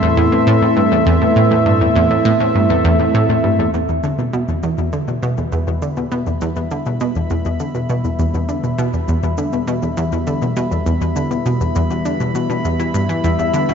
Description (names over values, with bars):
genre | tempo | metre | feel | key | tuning
ambient, sequencer-driven space music | 101 BPM | 4/4 | straight | A minor, E minor from 3.7 s | A4 = 441 Hz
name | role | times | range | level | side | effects
sweeping resonant pad | sustained chords | 0.0-13.7 s | A2 to C6 | -19 LUFS | left 1 dB | chorus
concert harp | arpeggios | 0.0-6.8, 13.2-13.7 s | A3 to E5 | -21 LUFS | moving between left 4 dB and right 5 dB | auto-pan, ping-pong delay
analog pluck | riff | 0.0-13.7 s | E2 to E3 | -17 LUFS | equal | chorus, ping-pong delay
electronic cabasa and toms | percussion | 3.7-13.7 s | none | -37 LUFS | left 8 dB | ping-pong delay
room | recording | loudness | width
moderate plate reverb, RT60 3.4 s | dreamy mix soaked in reverb, nothing above 7.6 kHz | -15 LUFS | side -7 dB against mid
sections
0.0-3.7 A section; 3.7-13.7 B section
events
fade-in on analog synth pad 3.7-13.7; fade-in on drum 3.7-13.7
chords
0.0 Am; 3.7 Em